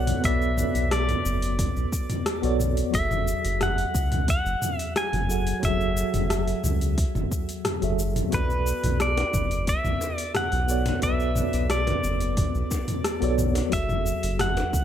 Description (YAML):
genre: sunset chillout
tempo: 89 BPM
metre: 4/4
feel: straight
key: B dorian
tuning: A4 = 440 Hz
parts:
  - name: pedal steel guitar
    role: melody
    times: 0.0-14.8 s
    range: B4 to G#5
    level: -29 LUFS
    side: equal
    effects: tape echo
  - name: mellow tine electric piano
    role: accompaniment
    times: 0.0-14.8 s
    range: F#3 to F#5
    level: -29 LUFS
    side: equal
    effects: medium stereo tremolo, auto-pan
  - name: round analog bass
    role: bass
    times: 0.0-14.8 s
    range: F#1 to C#2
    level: -26 LUFS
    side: equal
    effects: none
  - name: deep house drum kit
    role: drums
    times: 0.1-14.8 s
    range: hi-hat, rim click, shaker, toms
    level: -29 LUFS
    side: equal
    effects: overdrive
  - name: electronic kick drum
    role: drums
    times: 0.2-14.8 s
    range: none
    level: -27 LUFS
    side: equal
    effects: overdrive
  - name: bongos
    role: percussion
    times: 9.2-14.7 s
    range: none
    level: -36 LUFS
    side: left 5 dB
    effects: none
room: light reverb, digital ambience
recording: none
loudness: -22 LUFS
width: side -10 dB against mid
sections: 0.0-14.8 A section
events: none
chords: 0.0 Bm9; 2.9 F#m9; 8.3 Bm9; 13.7 F#m9